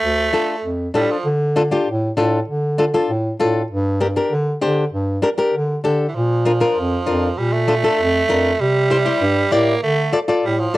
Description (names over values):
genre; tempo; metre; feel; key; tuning
latin; 196 BPM; 4/4; straight; D minor; A4 = 442 Hz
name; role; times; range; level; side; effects
growling tenor saxophone; second line; 0.0-1.3, 6.1-10.8 s; E3 to Bb3; -20 LUFS; right 3 dB; cassette tape
mellow bass clarinet; bass; 0.0-10.8 s; D2 to D3; -20 LUFS; equal; none
flamenco guitar; accompaniment; 0.3-10.8 s; D4 to D5; -18 LUFS; left 2 dB; cassette tape, plate reverb
room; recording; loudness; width
moderate small room reverb, RT60 0.5 s; home recording on cassette; -16 LUFS; side -17 dB against mid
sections
0.0-1.3 A section; 1.3-10.8 B section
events
none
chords
0.0 Dm; 3.7 Gm; 6.2 Bb; 8.6 C; 9.8 Dm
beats
| 0.03 0.33 0.64 0.95 | 1.25 1.56 1.87 2.17 | 2.48 2.79 3.09 3.40 | 3.71 4.01 4.32 4.62 | 4.93 5.24 5.54 5.85 | 6.15 6.46 6.77 7.07 | 7.38 7.68 7.99 8.30 | 8.60 8.91 9.21 9.52 | 9.83 10.13 10.44 10.74